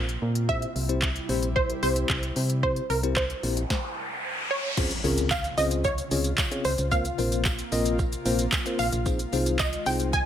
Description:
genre	dance-pop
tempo	112 BPM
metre	4/4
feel	straight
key	unclear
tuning	A4 = 439 Hz
part	mellow tine electric piano	accompaniment	0.0-10.1 s	Bb3 to Eb5	-30 LUFS	left 4 dB	medium stereo tremolo, sidechain pumping
part	airy breathy pad	sustained chords	0.0-10.3 s	C3 to F4	-37 LUFS	left 1 dB	chorus, tremolo, sidechain pumping
part	solid FM bass	bass	0.0-10.3 s	Bb1 to C3	-28 LUFS	equal	sidechain pumping
part	smooth R&B drum kit	drums	0.1-10.3 s	crash cymbal, handclaps, hi-hat, kick drum, shaker, snare drum	-28 LUFS	equal	overdrive
part	wide unison pluck	melody	0.5-10.3 s	Bb4 to Ab5	-30 LUFS	right 2 dB	ping-pong delay
part	riser and impact	sound effects	3.4-6.9 s	none	-34 LUFS	equal	none
part	tambourine	percussion	4.8-10.3 s	none	-42 LUFS	right 9 dB	none
room	light reverb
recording	none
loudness	-24 LUFS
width	side -10 dB against mid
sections	0.0-4.8 A section; 4.8-10.3 B section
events	riser 3.4-4.8; stop 3.7-4.8; impact 4.8-6.9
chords	0.5 C; 4.8 Dbmaj7; 6.9 Bbsus2; 9.1 Fm7

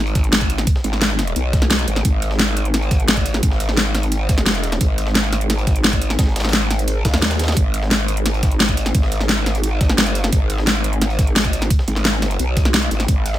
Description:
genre	dark technical drum and bass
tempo	174 BPM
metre	4/4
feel	straight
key	G# minor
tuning	A4 = 441 Hz
part	growl bass	bass	0.0-13.4 s	G#1 to D#2	-20 LUFS	equal	chorus, sidechain pumping
part	breakbeat sampler-style drum kit	drums	0.1-13.4 s	hi-hat, snare drum	-30 LUFS	equal	high-pass filter on snare, high-pass filter on hats
part	dubstep drum kit	drums	0.2-13.3 s	hi-hat, snare drum	-19 LUFS	equal	none
part	electronic kick drum	drums	0.2-13.2 s	none	-17 LUFS	equal	none
room	digital ambience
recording	none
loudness	-15 LUFS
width	side -13 dB against mid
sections	0.0-13.4 A section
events	none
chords	none

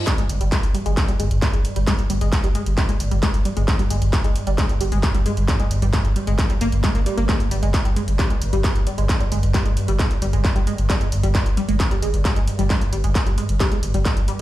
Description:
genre	driving peak-time techno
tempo	133 BPM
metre	4/4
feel	straight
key	unclear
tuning	A4 = 436 Hz
part	tight sequenced synth	riff	0.0-14.3 s	G3 to Bb3	-27 LUFS	equal	chorus, phaser, sidechain pumping, dub echo
part	swarming drone	drone	0.0-14.4 s	G2	-27 LUFS	right 1 dB	built-in reverb, sidechain pumping
part	electronic kick drum	drums	0.1-14.1 s	none	-21 LUFS	equal	distortion, overdrive, small room ambience
part	techno drum kit	drums	0.1-14.4 s	handclaps, hi-hat	-28 LUFS	equal	overdrive, small room ambience, sidechain pumping on hats
part	saturated sub bass	bass	0.3-14.3 s	G1	-22 LUFS	equal	sidechain pumping, low-pass filter
room	light reverb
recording	played on a big sound system in a bare room, stone room reverb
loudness	-18 LUFS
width	side -15 dB against mid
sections	0.0-14.4 A section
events	none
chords	none

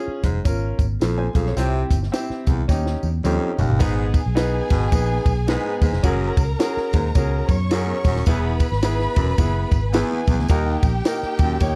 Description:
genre	uptempo 1960s-style soul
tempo	108 BPM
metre	4/4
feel	swing 60% on 8ths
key	G# minor from 3.8 s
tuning	A4 = 437 Hz
part	clear baby grand piano	accompaniment	0.0-11.8 s	A#3 to Ab5	-29 LUFS	equal	none
part	vintage muted fingered electric bass	bass	0.1-11.8 s	D#1 to F#2	-25 LUFS	equal	none
part	raspy baritone saxophone	riff	0.2-11.6 s	Eb2 to C3	-30 LUFS	equal	none
part	compact cocktail drum kit	drums	0.2-11.8 s	hi-hat, kick drum, ride cymbal, snare drum, toms	-23 LUFS	equal	none
part	congas	percussion	0.2-11.8 s	none	-40 LUFS	equal	none
part	tambourine	percussion	0.2-11.8 s	none	-44 LUFS	equal	none
part	warm symphonic string section	second line	3.8-11.8 s	G4 to C#6	-31 LUFS	equal	none
room	small room ambience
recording	dark, warm production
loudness	-21 LUFS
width	mono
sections	0.0-3.8 A section; 3.8-11.8 B section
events	drum fill 2.7-3.8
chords	0.0 Db; 1.6 C; 2.7 Eb7; 3.8 G#m; 6.0 F#add9; 8.3 E; 10.5 D#

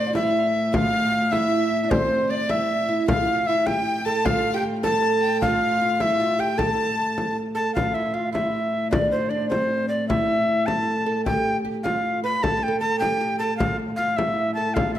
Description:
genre	medieval dance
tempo	103 BPM (dotted quarters)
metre	6/8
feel	straight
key	A minor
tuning	A4 = 443 Hz
part	tenor recorder	melody	0.0-15.0 s	C5 to B5	-23 LUFS	left 1 dB	none
part	clear fiddle	second line	0.0-7.4 s	C5 to A5	-32 LUFS	left 5 dB	none
part	oud	second line	0.0-15.0 s	C4 to B4	-27 LUFS	right 4 dB	none
part	rich viola da gamba	drone	0.0-15.0 s	A2	-29 LUFS	left 1 dB	none
part	frame drum	percussion	0.2-15.0 s	none	-27 LUFS	left 2 dB	none
room	wet recital hall reverb, RT60 1.4 s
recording	none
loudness	-20 LUFS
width	side -11 dB against mid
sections	0.0-7.8 A section; 7.8-15.0 B section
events	none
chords	none

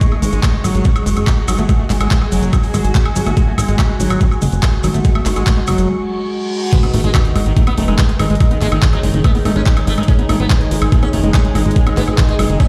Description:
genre	psychedelic trance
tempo	143 BPM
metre	4/4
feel	straight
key	unclear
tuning	A4 = 440 Hz
part	overtone-sweeping drone	sustained chords	0.0-12.7 s	G#3 to F#4	-26 LUFS	equal	chorus, built-in reverb, sidechain pumping
part	screaming distorted acid line	riff	0.0-12.7 s	F#3 to D#4	-24 LUFS	equal	distortion, chorus, sidechain pumping, digital delay
part	drum and bass drum kit	drums	0.0-12.7 s	crash cymbal, handclaps, hi-hat, woodblock	-26 LUFS	equal	overdrive, studio reverb
part	electronic kick drum	drums	0.0-12.7 s	none	-15 LUFS	equal	overdrive, studio reverb
part	maracas	percussion	0.0-5.9 s	none	-34 LUFS	equal	none
part	granular cloud pad	texture	0.0-12.7 s	G#4 to C#6	-31 LUFS	equal	built-in reverb, sidechain pumping
part	plucky analog bass	bass	0.2-12.6 s	F#1 to G#1	-19 LUFS	equal	none
part	reverse cymbal and sub drop	sound effects	6.1-8.4 s	none	-29 LUFS	equal	none
part	sitar	melody	6.7-12.7 s	D#3 to C#4	-25 LUFS	equal	phaser, sidechain pumping, digital delay
room	light reverb, digital ambience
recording	played on a big sound system in a bare room, stone room reverb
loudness	-15 LUFS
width	mono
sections	0.0-6.7 A section; 6.7-12.7 B section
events	break 5.9-6.7; reverse cymbal 6.1-6.7; drop 6.7-12.7; impact 6.7-8.4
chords	0.0 G#5

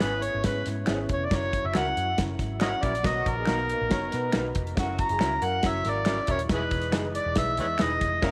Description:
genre	uptempo 1960s-style soul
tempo	139 BPM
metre	4/4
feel	straight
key	unclear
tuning	A4 = 440 Hz
part	overdriven harmonica	melody	0.0-8.2 s	E4 to A#5	-31 LUFS	equal	tape echo
part	dark upright piano	accompaniment	0.0-8.3 s	B3 to C#5	-38 LUFS	equal	none
part	percussive tonewheel organ	sustained chords	0.0-8.3 s	E3 to D#5	-40 LUFS	equal	slow rotary speaker
part	electric guitar through a small old amp	stabs	0.0-8.3 s	E3 to B4	-39 LUFS	equal	none
part	vintage muted picked electric bass	bass	0.0-8.3 s	D#1 to B2	-35 LUFS	equal	none
part	warm soul drum kit	drums	0.0-8.3 s	crash cymbal, hi-hat, kick drum, snare drum	-32 LUFS	equal	none
part	finger snap	percussion	0.9-7.9 s	none	-42 LUFS	equal	none
part	mellow horn section	second line	3.0-8.3 s	F#3 to C#5	-37 LUFS	equal	none
room	moderate spring reverb, RT60 1.7 s, small room ambience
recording	none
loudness	-27 LUFS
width	mono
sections	0.0-8.3 A section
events	harmonica solo 0.0-8.3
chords	0.0 C#m7; 1.3 F#7; 3.0 Bmaj7; 4.8 F#7; 6.5 Emaj7

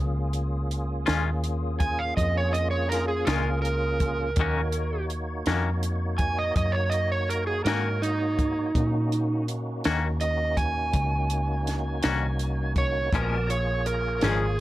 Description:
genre	slow blues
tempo	55 BPM (dotted quarters)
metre	12/8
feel	straight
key	unclear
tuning	A4 = 440 Hz
part	tonewheel organ	sustained chords	0.0-14.6 s	Bb3 to A5	-33 LUFS	equal	slow rotary speaker, overdrive, chorus vibrato
part	vintage muted fingered electric bass	bass	0.0-14.6 s	Ab1 to Bb2	-28 LUFS	equal	none
part	compact cocktail drum kit	drums	0.3-14.4 s	hi-hat, kick drum, snare drum	-29 LUFS	equal	none
part	twangy electric guitar	accompaniment	1.1-14.5 s	Bb2 to Gb4	-28 LUFS	left 5 dB	tremolo
part	overdriven slide guitar	second line	1.8-14.6 s	Eb4 to Ab5	-28 LUFS	right 3 dB	none
room	small room ambience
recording	none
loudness	-24 LUFS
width	side -16 dB against mid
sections	0.0-14.6 A section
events	electric slide guitar solo 0.0-14.6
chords	0.0 Bbm7; 4.4 Ebm7; 13.1 Bbm7

